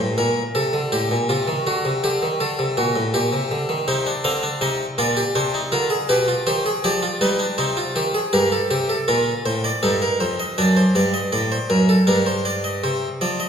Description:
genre	classical, baroque-style 3-part fugue for harpsichord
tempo	81 BPM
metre	3/4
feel	straight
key	C minor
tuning	A4 = 444 Hz
part	harpsichord	solo	0.0-13.5 s	F2 to F5	-18 LUFS	equal	none
room	wet recital hall reverb, RT60 1.6 s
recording	recorded in a church or concert hall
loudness	-18 LUFS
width	side -7 dB against mid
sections	0.0-12.8 A section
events	none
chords	0.0 Gm (rootless); 0.9 Am7b5; 1.7 D7; 3.1 Gm/Bb; 3.9 Cm; 5.4 Dm7b5/C; 6.1 G7/B; 7.6 Cm; 8.3 Gm; 9.8 Am7b5/G; 10.6 D7/F#; 12.1 Gm; 12.8 Cm

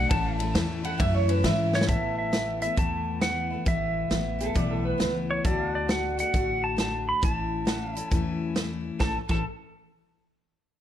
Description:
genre	honky-tonk and classic country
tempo	135 BPM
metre	4/4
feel	swing 66% on 8ths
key	A major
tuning	A4 = 444 Hz
part	pedal steel guitar	melody	0.0-9.4 s	C#5 to B5	-30 LUFS	right 2 dB	none
part	picked steel-string acoustic guitar	accompaniment	0.0-9.4 s	A2 to F#4	-30 LUFS	left 4 dB	none
part	pedal steel guitar	sustained chords	0.0-9.0 s	E5 to A5	-38 LUFS	left 2 dB	none
part	upright bass	bass	0.0-9.4 s	A1 to G#2	-32 LUFS	equal	none
part	natural country drum kit	drums	0.1-9.4 s	crash cymbal, hi-hat, kick drum, ride cymbal, snare drum	-28 LUFS	equal	none
part	electric guitar through a small old amp	second line	0.9-1.7, 4.4-5.1, 9.0-9.4 s	A4 to F#5	-30 LUFS	right 4 dB	tape echo
room	light reverb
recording	dark, warm production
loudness	-24 LUFS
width	side -10 dB against mid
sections	0.0-1.9 A section; 1.9-9.0 B section; 9.0-10.8 C section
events	drum fill 1.7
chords	0.1 A; 1.9 Asus2; 5.4 D; 7.2 A

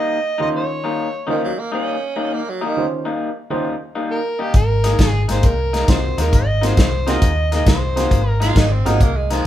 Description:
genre	electric blues shuffle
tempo	134 BPM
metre	4/4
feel	swing 67% on 8ths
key	Eb mixolydian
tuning	A4 = 440 Hz
part	overdriven harmonica	melody	0.0-1.4, 4.1-8.5 s	G4 to Eb5	-22 LUFS	equal	none
part	electric guitar through a small old amp	riff	0.0-9.5 s	Eb3 to Eb4	-23 LUFS	left 3 dB	none
part	warm baby grand piano	accompaniment	0.4-9.0 s	Eb3 to C6	-25 LUFS	right 3 dB	none
part	growling tenor saxophone	second line	1.3-2.9, 8.4-9.5 s	Eb3 to F4	-23 LUFS	right 5 dB	none
part	vintage muted fingered electric bass	bass	4.5-9.4 s	Ab1 to Eb2	-19 LUFS	equal	none
part	warm soul drum kit	drums	4.5-9.4 s	hi-hat, kick drum, snare drum	-17 LUFS	equal	none
room	light reverb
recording	band playing live in one room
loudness	-16 LUFS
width	side -12 dB against mid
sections	0.0-9.5 A section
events	none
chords	0.0 Eb13; 4.5 Ab13

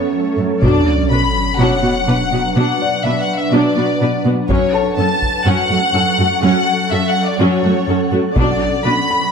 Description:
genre	cinematic, hybrid orchestral and electronic film score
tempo	124 BPM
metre	4/4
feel	straight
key	B minor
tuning	A4 = 440 Hz
part	warm symphonic violin section	melody	0.0-9.3 s	C#5 to B5	-18 LUFS	left 3 dB	none
part	rich symphonic viola section	accompaniment	0.0-8.9 s	F#3 to B4	-20 LUFS	equal	none
part	swarming drone	sustained chords	0.0-9.3 s	F#3 to F#5	-20 LUFS	right 1 dB	built-in reverb
part	dark baby grand piano	texture	0.0-9.3 s	A4 to B5	-27 LUFS	left 2 dB	ping-pong delay
part	warm symphonic cello section	bass	0.4-8.9 s	F#2 to B2	-19 LUFS	right 2 dB	none
part	taiko ensemble	drums	0.6-1.6, 4.5-5.4, 8.4-8.8 s	none	-21 LUFS	equal	none
part	sub drop	sound effects	0.6-2.6 s	none	-21 LUFS	equal	none
room	moderate scoring stage reverb, RT60 2.0 s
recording	none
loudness	-13 LUFS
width	side -6 dB against mid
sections	0.6-9.3 A section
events	impact 0.6-2.6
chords	0.0 F#m; 0.6 Bm; 4.5 F#m; 8.4 Bm

